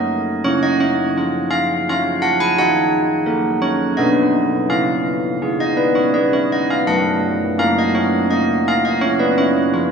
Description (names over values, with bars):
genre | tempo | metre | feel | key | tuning
classical, tune for church bells | 84 BPM | 3/4 | straight | unclear | A4 = 441 Hz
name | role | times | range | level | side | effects
carillon bells | solo | 0.0-9.9 s | F#3 to G#5 | -15 LUFS | equal | none
room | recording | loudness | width
wet church reverb, RT60 2.8 s | heard from further back in the room, small room ambience | -15 LUFS | side -6 dB against mid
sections
0.0-9.9 A section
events
none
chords
0.4 C#; 2.6 D#m; 4.0 B; 4.7 C#; 6.9 F#; 9.0 C#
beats
| 0.45 1.16 1.86 | 2.56 3.26 3.97 | 4.68 5.41 6.14 | 6.88 7.60 8.32 | 9.03 9.74